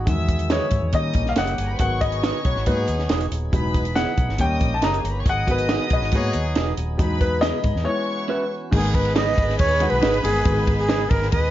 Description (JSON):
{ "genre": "uptempo 1960s-style soul", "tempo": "139 BPM", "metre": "4/4", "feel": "straight", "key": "G# minor", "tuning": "A4 = 440 Hz", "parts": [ { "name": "warm upright piano", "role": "accompaniment", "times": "0.0-11.0 s", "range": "D#3 to A#5", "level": "-24 LUFS", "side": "left 2 dB", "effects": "none" }, { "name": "tonewheel organ", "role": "sustained chords", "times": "0.0-11.5 s", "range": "D#3 to G#4", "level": "-34 LUFS", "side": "right 1 dB", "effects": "overdrive, lush chorus" }, { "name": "vintage muted fingered electric bass", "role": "bass", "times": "0.0-11.5 s", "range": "D#1 to D#3", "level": "-25 LUFS", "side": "equal", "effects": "none" }, { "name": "warm studio violin section", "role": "second line", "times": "0.1-11.5 s", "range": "D#4 to E6", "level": "-31 LUFS", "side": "equal", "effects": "none" }, { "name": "compact cocktail drum kit", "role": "drums", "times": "0.1-11.4 s", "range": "crash cymbal, hi-hat, kick drum, ride cymbal, snare drum", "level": "-23 LUFS", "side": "equal", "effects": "none" }, { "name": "electric guitar through a small old amp", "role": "stabs", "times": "0.5-11.0 s", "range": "B3 to E5", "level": "-27 LUFS", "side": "right 7 dB", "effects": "none" }, { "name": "mellow horn section", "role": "second line", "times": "2.0-11.5 s", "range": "B3 to D#5", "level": "-32 LUFS", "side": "left 2 dB", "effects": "none" }, { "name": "breathy jazz flute", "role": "melody", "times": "8.7-11.5 s", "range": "G#4 to D#5", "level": "-22 LUFS", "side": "right 1 dB", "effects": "none" } ], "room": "little or no reverb", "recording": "nothing above 7.4 kHz", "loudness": "-19 LUFS", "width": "side -13 dB against mid", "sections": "0.0-8.7 A section; 8.7-11.5 B section", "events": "upright piano solo 0.0-8.7; break 7.9-8.7", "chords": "0.1 Emaj7; 0.9 D#7; 1.8 G#m7; 3.5 Emaj7; 4.4 D#7; 5.3 G#m7; 7.0 Emaj7; 7.9 F#7sus4; 8.7 G#m", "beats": "| 0.07 0.51 0.94 1.37 | 1.80 2.23 2.67 3.10 | 3.53 3.96 4.40 4.83 | 5.26 5.70 6.13 6.56 | 6.99 7.43 7.86 8.29 | 8.73 9.16 9.59 10.02 | 10.46 10.89 11.32" }